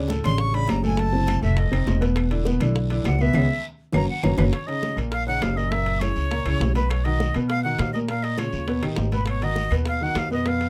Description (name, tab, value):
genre	Afro-Cuban jazz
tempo	203 BPM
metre	4/4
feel	straight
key	Eb minor from 4.5 s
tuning	A4 = 440 Hz
part	warm baby grand piano	accompaniment	0.0-10.7 s	A2 to B4	-29 LUFS	equal	none
part	upright bass	bass	0.0-10.7 s	E1 to B2	-26 LUFS	equal	none
part	bongos	percussion	0.1-10.7 s	none	-36 LUFS	equal	none
part	congas	percussion	0.1-10.7 s	none	-33 LUFS	equal	none
part	guiro	percussion	0.1-10.7 s	none	-46 LUFS	equal	none
part	timbales	percussion	0.1-10.7 s	none	-37 LUFS	equal	none
part	breathy bright jazz flute	melody	0.2-10.7 s	Cb5 to C#6	-31 LUFS	equal	none
part	claves	percussion	0.2-10.3 s	none	-41 LUFS	equal	none
part	concert flute	second line	4.4-10.7 s	Cb6 to Gb6	-35 LUFS	equal	none
room	little or no reverb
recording	close, detailed microphones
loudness	-23 LUFS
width	mono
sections	0.0-4.5 A section; 4.5-10.7 B section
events	flute solo 0.0-4.5; band accent 3.4-4.5; drum fill 3.8-4.5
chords	0.0 Dmaj7; 1.0 F#m7b5; 1.6 F7; 2.2 E5; 3.4 C#m7; 3.9 F#; 4.5 Ebm7; 5.7 Gb7; 6.9 B; 8.1 Bbm; 8.7 Ebaug; 9.3 Abm7